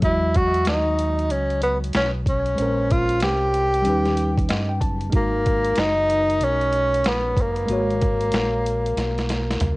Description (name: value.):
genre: hip hop, jazz-hop.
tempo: 94 BPM.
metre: 4/4.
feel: swing 64% on 16ths.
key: G# minor.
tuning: A4 = 440 Hz.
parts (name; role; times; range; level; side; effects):
breathy tenor saxophone; melody; 0.0-9.8 s; A#3 to G4; -21 LUFS; equal; cassette tape, analog delay.
tine electric piano; accompaniment; 0.0-9.8 s; F#3 to A5; -28 LUFS; equal; medium stereo tremolo, cassette tape.
fingered electric bass; bass; 0.0-9.8 s; F#1 to G2; -26 LUFS; equal; none.
boom bap sampler-style drum kit; drums; 0.0-9.8 s; hi-hat, kick drum, snare drum, toms; -24 LUFS; equal; none.
room: moderate studio reverb, RT60 0.5 s.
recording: home recording on cassette.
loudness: -19 LUFS.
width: side -21 dB against mid.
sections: 0.0-9.8 A section.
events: tine electric piano fill 4.2-5.1; drum fill 9.0-9.8.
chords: 0.0 Emaj9; 2.6 A#m9; 3.9 D#7alt; 5.1 G#m9.